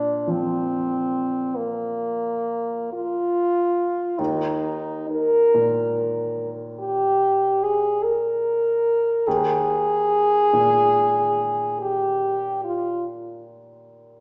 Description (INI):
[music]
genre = classical, romantic duo for French horn and grand piano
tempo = 47 BPM (dotted quarters)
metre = 12/8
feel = rubato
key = Eb major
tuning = A4 = 438 Hz
[part]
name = warm French horn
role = melody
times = 0.0-13.1 s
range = Bb3 to Bb4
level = -23 LUFS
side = equal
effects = none
[part]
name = dark baby grand piano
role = accompaniment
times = 0.0-14.2 s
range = Eb2 to F3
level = -33 LUFS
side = equal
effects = none
[sound]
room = wet recital hall reverb, RT60 1.4 s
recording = small speaker sound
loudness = -22 LUFS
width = mono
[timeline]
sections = 0.0-14.2 A section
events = none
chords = 0.0 Bb5; 4.2 Eb5